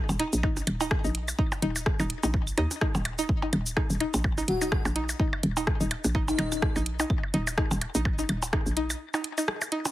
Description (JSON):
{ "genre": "minimal techno", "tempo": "126 BPM", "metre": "4/4", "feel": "swing 56% on 16ths", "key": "unclear", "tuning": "A4 = 442 Hz", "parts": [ { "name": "hollow knocking FM bass", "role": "bass", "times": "0.1-8.9 s", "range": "Eb1 to Eb2", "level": "-29 LUFS", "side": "equal", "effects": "sidechain pumping" }, { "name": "house drum kit", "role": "drums", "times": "0.1-9.9 s", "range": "cabasa, hi-hat, rim click", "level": "-32 LUFS", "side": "equal", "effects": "none" }, { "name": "claves and percussion blips", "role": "percussion", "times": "0.1-9.9 s", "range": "none", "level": "-34 LUFS", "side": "right 2 dB", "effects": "ping-pong delay" }, { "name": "string-like resonator pluck", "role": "riff", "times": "0.2-9.8 s", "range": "Eb4", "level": "-33 LUFS", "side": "equal", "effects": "chorus, sidechain pumping, ping-pong delay" }, { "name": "electronic kick drum", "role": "drums", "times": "0.4-8.6 s", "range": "none", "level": "-28 LUFS", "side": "equal", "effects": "none" }, { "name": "airy dreamy lead", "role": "melody", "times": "4.5-6.6 s", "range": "Eb4 to Gb4", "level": "-31 LUFS", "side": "left 3 dB", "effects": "chorus, ping-pong delay" } ], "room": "little or no reverb", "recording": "heavily compressed radio sound", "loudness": "-25 LUFS", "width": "side -15 dB against mid", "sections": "0.0-9.9 A section", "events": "break 9.0-9.9", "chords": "0.0 Eb5" }